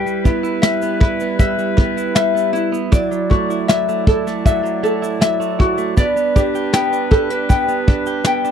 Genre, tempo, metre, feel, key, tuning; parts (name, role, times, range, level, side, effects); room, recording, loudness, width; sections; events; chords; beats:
acoustic pop; 79 BPM; 4/4; straight; D major; A4 = 440 Hz
ukulele; accompaniment; 0.0-8.5 s; E4 to G5; -19 LUFS; left 3 dB
clear woodwind section; sustained chords; 0.0-8.5 s; F#3 to D5; -25 LUFS; left 2 dB
direct-recorded clean electric guitar; arpeggios; 0.0-8.5 s; F#3 to G4; -22 LUFS; right 12 dB
soft brush drum kit; drums; 0.1-8.5 s; kick drum, shaker, snare drum; -13 LUFS; equal
little or no reverb; dry, close 1970s-style studio recording; -14 LUFS; side -8 dB against mid
0.0-8.5 A section
0.0 Em; 2.9 Dadd9/F#; 6.0 G
0.64 1.40 2.17 | 2.93 3.69 4.45 5.21 | 5.98 6.74 7.50 8.26